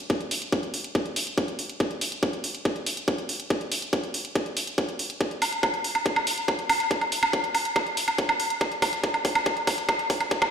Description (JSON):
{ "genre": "psychedelic trance", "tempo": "141 BPM", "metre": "4/4", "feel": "straight", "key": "none", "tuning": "none", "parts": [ { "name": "electronic hi-hat and woodblock", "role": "drums", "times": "0.1-10.5 s", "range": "none", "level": "-26 LUFS", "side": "right 1 dB", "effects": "overdrive, high-pass filter on hats, small room ambience, high-pass filter on perc" }, { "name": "electronic kick drum", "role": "drums", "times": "0.1-10.5 s", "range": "none", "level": "-27 LUFS", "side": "equal", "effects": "overdrive, high-pass filter on kick, small room ambience" } ], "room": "wet lush hall reverb, RT60 1.9 s", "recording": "played on a big sound system in a bare room, stone room reverb", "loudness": "-24 LUFS", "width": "side -7 dB against mid", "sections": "0.0-10.5 A section", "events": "build-up 0.0-10.5; drum fill 5.2-10.5", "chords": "none", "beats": "| 0.10 0.53 0.95 1.38 | 1.80 2.23 2.65 3.08 | 3.50 3.93 4.36 4.78 | 5.21 5.63 6.06 6.48 | 6.91 7.33 7.76 8.18 | 8.61 9.04 9.46 9.89 | 10.31" }